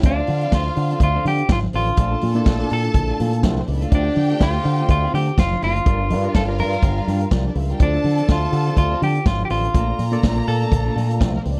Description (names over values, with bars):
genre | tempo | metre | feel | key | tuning
disco | 124 BPM | 4/4 | swing 56% on 16ths | D minor | A4 = 438 Hz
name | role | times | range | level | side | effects
warm studio violin section | second line | 0.0-11.6 s | Bb3 to Bb5 | -34 LUFS | equal | none
barky reed electric piano | accompaniment | 0.0-11.6 s | Bb2 to D5 | -30 LUFS | equal | overdrive, fast tremolo
semi-hollow electric guitar | accompaniment | 0.0-11.6 s | F3 to Bb4 | -34 LUFS | equal | none
fingered electric bass with an envelope filter | bass | 0.0-11.6 s | F1 to D3 | -24 LUFS | equal | none
vintage drum kit | drums | 0.0-11.6 s | hi-hat, kick drum, snare drum | -20 LUFS | equal | none
congas | percussion | 0.0-11.4 s | none | -31 LUFS | equal | none
clean electric guitar | melody | 0.1-11.2 s | D4 to Bb4 | -26 LUFS | equal | none
room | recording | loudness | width
little or no reverb | dry, close 1970s-style studio recording | -19 LUFS | mono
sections
0.0-11.6 A section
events
none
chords
0.0 Dm7; 2.0 Bbmaj7; 3.9 Dm7; 5.9 Gm7; 7.8 Dm7; 9.7 Bbmaj7